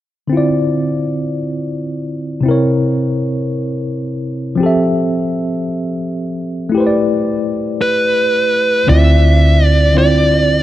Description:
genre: R&B.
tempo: 56 BPM (dotted quarters).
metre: 6/8.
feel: straight.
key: D dorian.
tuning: A4 = 440 Hz.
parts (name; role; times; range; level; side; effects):
tine electric piano; accompaniment; 0.3-10.6 s; C3 to E5; -15 LUFS; left 1 dB; auto-pan.
fuzz lead guitar; melody; 7.8-10.6 s; B4 to E5; -13 LUFS; right 2 dB; distortion.
vintage muted fingered electric bass; bass; 8.9-10.6 s; D2; -11 LUFS; equal; none.
room: light reverb.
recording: none.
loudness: -13 LUFS.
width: side -13 dB against mid.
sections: 0.3-8.9 A section; 8.9-10.6 B section.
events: none.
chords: 0.3 Dm9; 2.4 C7b9; 4.6 Fmaj9; 6.7 A9sus4; 8.9 Dm9.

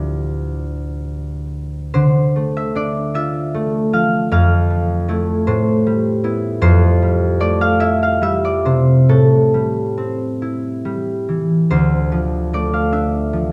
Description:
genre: classical, solo harp piece.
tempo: 43-53 BPM (dotted quarters).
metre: 6/8.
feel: rubato.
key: D minor.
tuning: A4 = 440 Hz.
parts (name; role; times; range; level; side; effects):
concert harp; solo; 0.0-13.5 s; D2 to F5; -17 LUFS; equal; none.
room: moderate recital hall reverb, RT60 1.5 s.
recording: dark, warm production.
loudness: -17 LUFS.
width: mono.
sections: 0.0-1.9 A section; 1.9-13.5 B section.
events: none.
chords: 0.0 Dmadd9; 1.9 Dm7; 4.3 Fmaj7; 5.5 Am9; 6.6 Fmaj9; 9.1 Am7; 11.7 Dm7.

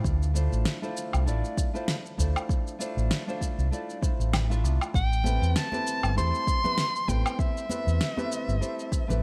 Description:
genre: sunset chillout.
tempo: 98 BPM.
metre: 4/4.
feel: swing 56% on 16ths.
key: A minor.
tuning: A4 = 440 Hz.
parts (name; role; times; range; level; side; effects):
nylon-string guitar; accompaniment; 0.0-9.2 s; A3 to E5; -37 LUFS; equal; digital delay.
fingered electric bass; bass; 0.0-9.2 s; G1 to E2; -28 LUFS; equal; none.
electronic kick drum; drums; 0.0-9.1 s; none; -30 LUFS; equal; none.
electronic shaker, snare drum and woodblock; drums; 0.1-9.2 s; none; -35 LUFS; equal; none.
warm soprano saxophone; melody; 5.0-9.2 s; E5 to C6; -32 LUFS; equal; digital delay.
congas; percussion; 5.2-9.2 s; none; -39 LUFS; equal; none.
room: light reverb, studio ambience.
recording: none.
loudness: -27 LUFS.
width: mono.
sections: 0.0-9.2 A section.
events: none.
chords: 0.0 Dm7; 4.9 Am7.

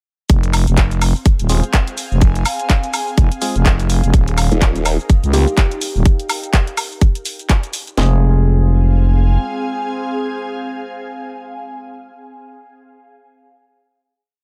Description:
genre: bass house.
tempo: 125 BPM.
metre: 4/4.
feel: swing 58% on 16ths.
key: F minor.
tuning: A4 = 440 Hz.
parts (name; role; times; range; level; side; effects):
growling FM bass; bass; 0.3-9.4 s; Eb1 to Db2; -16 LUFS; equal; overdrive, sidechain pumping.
garage drum kit; drums; 0.3-8.1 s; kick drum, snare drum; -15 LUFS; equal; none.
garage drum kit; drums; 0.3-8.0 s; handclaps, hi-hat, shaker, woodblock; -24 LUFS; equal; none.
ethereal airy pad; texture; 1.2-12.3 s; C4 to Ab5; -29 LUFS; equal; ensemble chorus, built-in reverb, phaser, sidechain pumping.
percussive organ stab; stabs; 1.5-12.1 s; Ab3 to Ab4; -28 LUFS; equal; chorus, sidechain pumping, digital delay.
formant-sweep wobble bass; bass; 4.5-5.0 s; Eb1; -19 LUFS; equal; chorus, overdrive, sidechain pumping.
kalimba; melody; 5.3-5.5 s; G4; -28 LUFS; equal; digital delay.
room: little or no reverb.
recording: none.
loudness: -16 LUFS.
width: mono.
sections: 0.3-8.0 drop; 8.0-11.8 final chord.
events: drop 0.3-8.0.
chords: 0.3 Fm; 4.1 Ebadd9; 8.0 Fm.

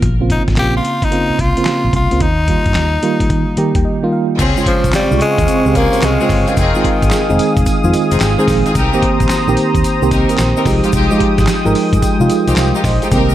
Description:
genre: R&B, new jack swing.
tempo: 110 BPM.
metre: 4/4.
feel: swing 66% on 16ths.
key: unclear.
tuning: A4 = 440 Hz.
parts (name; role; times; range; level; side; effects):
FM electric piano with auto-pan; accompaniment; 0.0-13.3 s; Db3 to Bb5; -16 LUFS; right 3 dB; none.
vintage muted fingered electric bass; bass; 0.0-13.3 s; F1 to Eb3; -17 LUFS; equal; none.
dusty soul sampler-style drum kit; drums; 0.0-13.3 s; crash cymbal, handclaps, hi-hat, kick drum, snare drum, tambourine; -18 LUFS; equal; none.
raspy tenor saxophone; melody; 0.3-7.6 s; Eb3 to G4; -18 LUFS; left 1 dB; tape echo.
lush unison pad; sustained chords; 4.4-13.3 s; Ab3 to Eb6; -20 LUFS; left 1 dB; chorus.
clear studio string section; stabs; 4.4-13.3 s; Ab3 to Bb4; -21 LUFS; left 2 dB; tape echo.
tube shaker; percussion; 4.4-13.3 s; none; -34 LUFS; left 6 dB; none.
room: digital ambience.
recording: none.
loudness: -11 LUFS.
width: side -12 dB against mid.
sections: 0.0-4.4 A section; 4.4-13.1 B section.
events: FM electric piano fill 3.3-4.4, 7.7-8.8; silent gap 3.8-4.4.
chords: 0.0 Bbmadd9; 2.2 Ebadd9; 4.4 Dbmaj7; 6.6 Fm7; 8.8 Cm7; 10.7 Fm9.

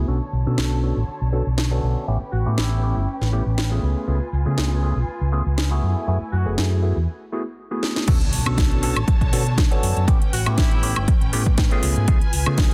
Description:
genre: filtered disco house.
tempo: 120 BPM.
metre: 4/4.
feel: swing 54% on 16ths.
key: B dorian.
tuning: A4 = 440 Hz.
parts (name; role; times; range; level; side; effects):
overdriven tine electric piano; accompaniment; 0.0-12.7 s; A3 to A4; -30 LUFS; equal; phaser, sidechain pumping, low-pass filter.
rich symphonic string section; sustained chords; 0.0-12.7 s; D3 to A5; -35 LUFS; equal; vintage 12-bit sampler grit, sidechain pumping, low-pass filter.
fingered electric bass; bass; 0.0-12.7 s; F#1 to C#3; -24 LUFS; equal; sidechain pumping, low-pass filter.
maracas; percussion; 0.1-7.1 s; none; -64 LUFS; equal; none.
house drum kit; drums; 0.6-12.7 s; crash cymbal, hi-hat, snare drum, woodblock; -29 LUFS; equal; overdrive, sidechain pumping on hats, sidechain pumping on cymbals, sidechain pumping on perc.
brilliant horn section; melody; 2.3-3.1, 6.3-6.5, 10.3-11.1 s; E4 to F#4; -34 LUFS; equal; sidechain pumping, low-pass filter, tape echo.
electronic kick drum; drums; 8.1-12.7 s; none; -21 LUFS; equal; overdrive.
impact; sound effects; 8.1-10.1 s; none; -32 LUFS; equal; none.
room: little or no reverb.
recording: dense, heavily limited modern master.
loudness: -21 LUFS.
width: mono.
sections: 0.0-8.1 A section; 8.1-12.7 B section.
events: filter sweep 0.0-8.1; break 7.1-8.1; drum fill 7.8; drop 8.1-12.7; impact 8.1-10.1.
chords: 0.1 Bm9; 2.1 A9; 3.8 C#7b13; 5.8 F#m11; 8.1 Bm9; 10.1 A9; 11.8 C#7b13.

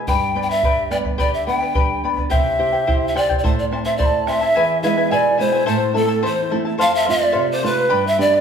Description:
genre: andean folk, Andean ensemble.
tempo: 107 BPM.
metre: 2/4.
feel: straight.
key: A minor.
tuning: A4 = 440 Hz.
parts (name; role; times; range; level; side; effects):
charango; accompaniment; 0.0-8.4 s; E4 to B5; -23 LUFS; left 4 dB; none.
flamenco guitar; accompaniment; 0.0-8.4 s; E2 to G4; -24 LUFS; right 2 dB; none.
breathy pan flute; melody; 0.1-8.4 s; A4 to G5; -19 LUFS; right 1 dB; none.
bombo; percussion; 0.1-4.4 s; none; -22 LUFS; right 1 dB; none.
bright reedy large quena; second line; 4.0-8.4 s; A4 to B5; -24 LUFS; right 2 dB; none.
room: wet large studio reverb, RT60 0.9 s.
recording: band playing live in one room.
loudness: -16 LUFS.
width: side -7 dB against mid.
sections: 0.0-4.6 A section; 4.6-8.4 B section.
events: none.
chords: 0.1 G; 2.3 C; 3.4 Am; 4.6 E; 5.7 Am; 6.8 F.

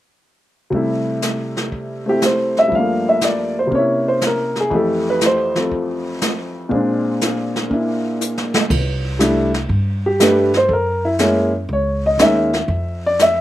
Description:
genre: jazz piano trio.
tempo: 120 BPM.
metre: 4/4.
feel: swing 68% on 8ths.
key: C major.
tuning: A4 = 441 Hz.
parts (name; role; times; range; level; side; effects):
warm upright piano; melody; 0.7-13.4 s; F2 to F5; -16 LUFS; equal; none.
jazz brush drum kit; drums; 0.7-13.4 s; brushed snare drum, hi-hat, kick drum, ride cymbal, snare drum; -21 LUFS; right 1 dB; none.
upright bass; bass; 8.7-13.4 s; C2 to G2; -22 LUFS; equal; none.
room: little or no reverb.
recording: none.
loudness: -15 LUFS.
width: side -13 dB against mid.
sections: 0.7-8.7 A section; 8.7-13.4 B section.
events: drum fill 8.2-8.7.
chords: 0.7 C6; 2.7 Gm9; 3.7 C7b9; 4.7 Fmaj9; 6.7 Bb9; 8.7 Csus2; 10.7 F#9; 12.7 Fmaj7(no3).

